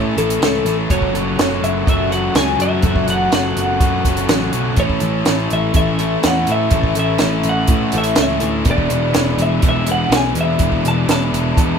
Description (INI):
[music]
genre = indie rock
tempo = 124 BPM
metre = 4/4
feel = straight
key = A major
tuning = A4 = 440 Hz
[part]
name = twelve-string electric guitar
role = melody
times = 0.0-11.8 s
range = A4 to A5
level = -21 LUFS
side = left 1 dB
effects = none
[part]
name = combo organ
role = sustained chords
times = 0.0-11.8 s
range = B4 to F#6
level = -31 LUFS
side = equal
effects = none
[part]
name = crunchy overdriven guitar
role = riff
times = 0.0-11.8 s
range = E2 to F#4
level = -22 LUFS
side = left 9 dB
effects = none
[part]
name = overdriven electric guitar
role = riff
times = 0.0-11.8 s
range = E3 to A4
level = -22 LUFS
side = right 5 dB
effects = none
[part]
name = picked electric bass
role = bass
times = 0.0-11.8 s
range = E1 to A2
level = -21 LUFS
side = equal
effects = none
[part]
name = compact cocktail drum kit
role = drums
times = 0.2-11.7 s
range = hi-hat, kick drum, snare drum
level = -18 LUFS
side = right 1 dB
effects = none
[sound]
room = light reverb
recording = band playing live in one room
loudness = -14 LUFS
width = side -7 dB against mid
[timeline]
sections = 0.0-11.8 A section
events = none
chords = 0.0 A; 0.9 F#m7; 4.8 A; 8.7 E7sus4